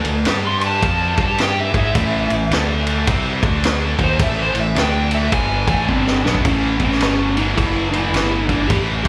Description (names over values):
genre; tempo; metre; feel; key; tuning
blues rock power trio and southern rock; 107 BPM; 4/4; swing 63% on 8ths; unclear; A4 = 440 Hz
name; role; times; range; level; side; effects
tight distorted guitar; riff; 0.0-9.1 s; G2 to G#4; -24 LUFS; equal; distortion
fuzz fingered electric bass; bass; 0.0-9.1 s; F#1 to G#2; -24 LUFS; equal; overdrive
vintage drum kit; drums; 0.0-9.1 s; kick drum, ride cymbal, snare drum; -23 LUFS; equal; none
overdriven slide guitar; melody; 0.5-9.1 s; C4 to C6; -24 LUFS; equal; slapback echo
room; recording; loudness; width
little or no reverb; live gig heard through the venue's PA, club reverb; -18 LUFS; mono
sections
0.0-6.4 A section; 6.4-9.1 B section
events
electric slide guitar solo 0.0-6.4; drum fill 5.9-6.4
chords
0.3 G5; 0.8 F; 1.1 G5; 1.7 Emaj7/G#; 1.9 A5; 2.5 D5; 3.1 C; 3.4 D5; 3.9 A5; 4.8 D5; 5.3 E7; 6.4 A7